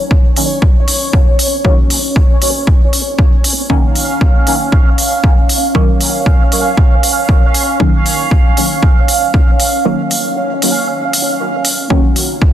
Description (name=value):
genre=dub techno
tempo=117 BPM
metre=4/4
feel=swing 55% on 16ths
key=Eb minor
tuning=A4 = 441 Hz
part: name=bubbling stepped-filter texture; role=texture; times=0.0-12.5 s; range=Db4 to Gb5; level=-17 LUFS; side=right 2 dB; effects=chorus, built-in reverb, sidechain pumping
part: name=electronic kick drum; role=drums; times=0.1-12.5 s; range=none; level=-10 LUFS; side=equal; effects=studio reverb
part: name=electronic hi-hat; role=drums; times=0.4-12.3 s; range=none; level=-16 LUFS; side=equal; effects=studio reverb
part: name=deep mellow chord stab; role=stabs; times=1.6-12.0 s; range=Eb3 to Db4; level=-19 LUFS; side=equal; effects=chorus, phaser, sidechain pumping, dub echo
part: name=dark analog pad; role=sustained chords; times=12.3-12.5 s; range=Db4 to Eb5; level=-36 LUFS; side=left 2 dB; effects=none
room=light reverb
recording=dense, heavily limited modern master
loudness=-10 LUFS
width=side -11 dB against mid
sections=0.0-12.5 A section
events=break 9.9-11.9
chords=0.0 Ebm7